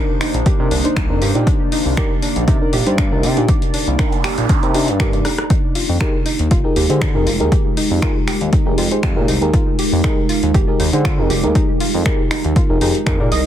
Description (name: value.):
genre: deep house.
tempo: 119 BPM.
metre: 4/4.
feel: swing 54% on 16ths.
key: F dorian.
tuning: A4 = 438 Hz.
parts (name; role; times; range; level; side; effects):
deep dark ambient pad; sustained chords; 0.0-13.5 s; Ab3 to D5; -23 LUFS; right 1 dB; chorus, built-in reverb, sidechain pumping.
soft round pluck; arpeggios; 0.0-13.4 s; D4 to Eb5; -26 LUFS; right 3 dB; chorus, cassette tape, sidechain pumping, tape echo.
mellow FM electric piano; stabs; 0.0-13.3 s; D4 to D5; -22 LUFS; equal; chorus, cassette tape, sidechain pumping, analog delay.
punchy analog drum machine; drums; 0.2-13.4 s; finger snaps, hi-hat, rim click; -24 LUFS; left 2 dB; soft clipping on snare.
smooth synth bass; bass; 0.3-13.4 s; F1 to D3; -20 LUFS; equal; sidechain pumping.
electronic kick drum; drums; 0.5-13.2 s; none; -17 LUFS; equal; overdrive.
noise sweep; sound effects; 3.8-5.5 s; none; -27 LUFS; right 9 dB; none.
room: digital ambience.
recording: dense, heavily limited modern master.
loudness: -14 LUFS.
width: side -11 dB against mid.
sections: 0.0-13.5 A section.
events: noise sweep 3.8-5.5; drum fill 5.3.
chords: 0.0 Cm9; 5.5 Fm11.